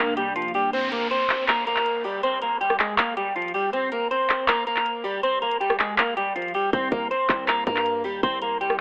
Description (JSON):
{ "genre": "hip hop, trap", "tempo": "160 BPM", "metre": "4/4", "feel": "half-time", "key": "unclear", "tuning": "A4 = 442 Hz", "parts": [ { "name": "electric guitar at the edge of break-up", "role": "melody", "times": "0.0-8.8 s", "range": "F3 to C5", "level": "-25 LUFS", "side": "equal", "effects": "phaser" }, { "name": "glassy FM pad", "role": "sustained chords", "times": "0.0-0.7 s", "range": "C3 to D4", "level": "-39 LUFS", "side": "equal", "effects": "ensemble chorus, built-in reverb, phaser" }, { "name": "trap drum kit", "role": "drums", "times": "0.2-8.8 s", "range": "handclaps, hi-hat, kick drum, rim click", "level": "-26 LUFS", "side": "equal", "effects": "none" }, { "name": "downlifter", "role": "sound effects", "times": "0.7-3.7 s", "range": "none", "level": "-37 LUFS", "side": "equal", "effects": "none" }, { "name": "hard-hitting 808-style bass", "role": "bass", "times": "6.7-8.8 s", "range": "C2 to G2", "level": "-35 LUFS", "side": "equal", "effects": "none" } ], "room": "moderate echo chamber reverb, RT60 1.8 s", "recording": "telephone sound", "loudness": "-24 LUFS", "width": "mono", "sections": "0.7-8.8 A section", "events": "break 0.0-0.7; kick muted 0.7-6.7", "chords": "0.0 Bbadd9; 0.7 Bbsus2; 6.7 C7(no3)" }